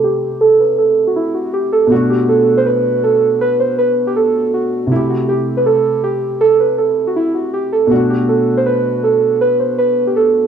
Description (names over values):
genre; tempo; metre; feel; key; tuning
hip hop; 160 BPM; 4/4; half-time; B phrygian; A4 = 440 Hz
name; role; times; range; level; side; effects
muted felt-like synth keys; melody; 0.0-10.5 s; E4 to C5; -13 LUFS; right 3 dB; chorus, analog delay
dark concert grand piano; accompaniment; 0.0-10.5 s; B2 to G4; -18 LUFS; left 1 dB; none
room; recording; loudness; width
light reverb, studio ambience; dry, gritty hardware recording, cassette tape, low-pass filter; -12 LUFS; side -8 dB against mid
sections
0.0-1.9 A section; 1.9-10.5 B section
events
filter sweep 0.0-1.9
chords
0.0 Am7; 1.9 Bm7; 4.9 Am7; 7.9 Bm7